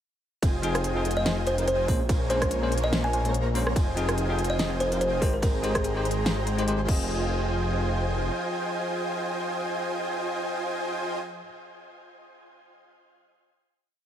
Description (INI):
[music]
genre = future bass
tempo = 144 BPM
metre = 4/4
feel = swing 56% on 16ths, half-time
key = F minor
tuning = A4 = 442 Hz
[part]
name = dense compressed supersaw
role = riff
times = 0.4-11.2 s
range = Ab3 to C6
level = -30 LUFS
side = right 1 dB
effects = sidechain pumping, tape echo
[part]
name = wide detuned saw bass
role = bass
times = 0.4-8.3 s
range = F1 to Bb1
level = -28 LUFS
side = equal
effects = chorus, sidechain pumping
[part]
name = electronic kick drum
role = drums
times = 0.4-7.0 s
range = none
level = -25 LUFS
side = equal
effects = none
[part]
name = pop drum kit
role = drums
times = 0.4-7.0 s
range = crash cymbal, hi-hat, ride cymbal, rim click, snare drum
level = -32 LUFS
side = equal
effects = none
[part]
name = bell-like tine electric piano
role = accompaniment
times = 0.6-11.5 s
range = Bb2 to Eb5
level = -33 LUFS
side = left 2 dB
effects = sidechain pumping, tape echo
[part]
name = buzzing kalimba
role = melody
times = 1.2-5.9 s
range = Ab4 to Ab5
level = -30 LUFS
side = equal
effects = sidechain pumping, dub echo
[sound]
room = digital ambience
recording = none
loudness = -24 LUFS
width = side -10 dB against mid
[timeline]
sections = 0.4-7.1 drop; 7.1-10.4 final hit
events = drop 0.4-7.1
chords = 0.4 Fm7; 1.9 Bbm9; 3.8 Fm7; 5.2 Abmaj7; 6.9 Fm7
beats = | 0.43 0.84 1.26 1.68 | 2.09 2.51 2.93 3.34 | 3.76 4.18 4.59 5.01 | 5.43 5.84 6.26 6.68 | 7.09 7.51 7.93 8.34 | 8.76 9.18 9.59 10.01